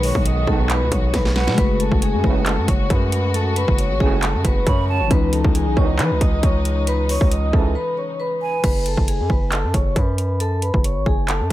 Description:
hip hop, trap; 136 BPM; 4/4; half-time; F# dorian; A4 = 440 Hz
vibraphone with medium hard mallets; melody; 0.0-11.5 s; G#4 to D#6; -24 LUFS; left 2 dB; digital delay
tine electric piano; accompaniment; 0.0-8.7 s; B2 to F#4; -27 LUFS; left 6 dB
dark chamber string section; sustained chords; 0.0-8.6 s; C#3 to G#4; -30 LUFS; left 1 dB
distorted 808-style bass; bass; 0.0-11.5 s; F#1 to E3; -21 LUFS; equal; distortion
trap drum kit; drums; 0.0-11.5 s; crash cymbal, handclaps, hi-hat, kick drum, snare drum; -20 LUFS; equal
mellow brass ensemble; stabs; 0.5-7.7 s; C#2 to E3; -26 LUFS; right 7 dB
breathy mellow silver concert flute; second line; 1.4-1.6, 4.7-5.1, 8.4-8.6 s; F#5 to B5; -27 LUFS; right 8 dB; digital delay
small room ambience; -16 LUFS; side -15 dB against mid
0.0-8.6 A section; 8.6-11.5 B section
drum fill 1.1-1.6; break 7.8-8.6
0.0 B6; 1.6 F#madd9; 5.1 C#madd9; 8.6 F#madd9

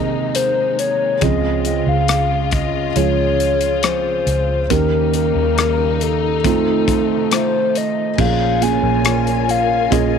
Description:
pop ballad; 69 BPM; 4/4; straight; A4 = 440 Hz
hollow clarinet-like synth lead; melody; 0.0-10.2 s; A4 to Ab5; -19 LUFS; left 4 dB; chorus
felt-muted upright piano; accompaniment; 0.0-10.2 s; Bb2 to Bb4; -20 LUFS; right 13 dB
warm studio string section; sustained chords; 0.0-10.2 s; C3 to Ab5; -25 LUFS; left 14 dB
fingerpicked steel-string acoustic guitar; arpeggios; 0.0-10.2 s; Bb2 to Ab4; -28 LUFS; left 13 dB
vintage muted fingered electric bass; bass; 0.0-10.2 s; Bb1 to F2; -22 LUFS; equal
modern studio drum kit; drums; 0.3-10.1 s; crash cymbal, hi-hat, kick drum, rim click; -22 LUFS; left 3 dB
small room reverb; 1960s-style stereo with parts hard left and right; -15 LUFS; side -7 dB against mid
0.0-8.2 A section; 8.2-10.2 B section
0.0 Abadd9/Eb; 1.2 Dbmaj7; 4.7 Eb7; 6.4 F7; 8.2 Bbm7

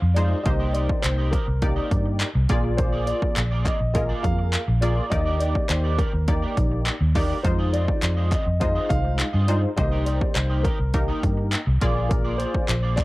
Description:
dance-pop; 103 BPM; 4/4; straight; A4 = 440 Hz
dark grand piano; melody; 0.0-13.0 s; Bb4 to F5; -30 LUFS; equal; cassette tape, tape echo
electric guitar at the edge of break-up; riff; 0.0-13.0 s; Bb3 to Eb5; -34 LUFS; right 4 dB; analog chorus
vintage muted fingered electric bass; bass; 0.0-13.0 s; Bb1 to G2; -23 LUFS; equal; sidechain pumping
impact; sound effects; 0.0-0.5 s; barely audible
funky polysynth comp; accompaniment; 0.2-12.7 s; Ab3 to D5; -28 LUFS; left 1 dB; chorus, sidechain pumping
punchy analog drum machine; drums; 0.2-13.0 s; handclaps, hi-hat, kick drum; -25 LUFS; equal; cassette tape
group handclap; percussion; 1.0-13.0 s; -33 LUFS; left 2 dB
digital ambience; home recording on cassette; -20 LUFS; side -19 dB against mid
0.0-13.0 A section
impact 0.0-0.5
0.5 Cm7; 2.5 Bb7; 5.1 Ebmaj7; 7.4 Fm7; 9.8 Cm7; 11.8 Bb7

